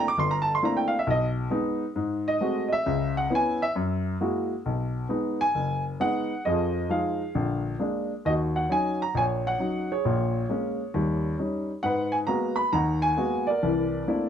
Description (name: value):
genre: solo jazz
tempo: 134 BPM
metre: 4/4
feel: swing 66% on 8ths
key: B major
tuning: A4 = 440 Hz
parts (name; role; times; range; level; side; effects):
- warm baby grand piano; solo; 0.0-14.3 s; F#1 to D6; -24 LUFS; equal; none
room: moderate studio reverb, RT60 0.8 s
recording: none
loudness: -24 LUFS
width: side -8 dB against mid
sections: 0.0-4.7 A section; 4.7-14.3 B section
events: grand piano solo 0.0-4.7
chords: 0.0 C13; 1.1 B6; 2.0 G#7b9; 2.9 C#m7; 3.8 F#9; 4.7 B6; 6.4 Fm7; 7.3 A#7; 8.2 D#m7; 10.0 A#m7; 10.9 D#7; 11.8 G#m9; 13.6 C13